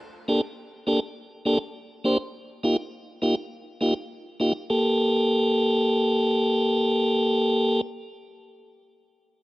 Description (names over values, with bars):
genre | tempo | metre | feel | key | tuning
dancehall | 102 BPM | 4/4 | straight | G minor | A4 = 440 Hz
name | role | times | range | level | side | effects
tonewheel organ | accompaniment | 0.3-7.8 s | Bb3 to C5 | -22 LUFS | equal | stopped rotary speaker
room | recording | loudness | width
light reverb, digital ambience | worn, warbling old tape, cassette tape, warbly pitch drift | -22 LUFS | side -19 dB against mid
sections
0.0-4.7 A section; 4.7-7.1 B section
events
none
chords
0.0 Gmadd9; 2.3 Ebadd9; 4.7 Gmadd9